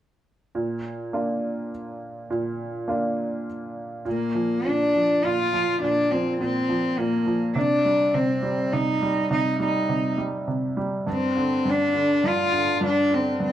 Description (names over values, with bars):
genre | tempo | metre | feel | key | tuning
folk | 103 BPM | 3/4 | straight | Bb major | A4 = 438 Hz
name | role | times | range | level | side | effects
bright baby grand piano | accompaniment | 0.5-13.5 s | G2 to F4 | -26 LUFS | right 2 dB | none
warm cello | melody | 4.1-13.5 s | Bb3 to F4 | -22 LUFS | left 1 dB | none
room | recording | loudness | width
wet large studio reverb, RT60 0.9 s | none | -21 LUFS | side -11 dB against mid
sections
0.5-4.1 A section; 4.1-13.5 B section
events
none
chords
0.5 Bb; 7.6 Cm; 11.1 G5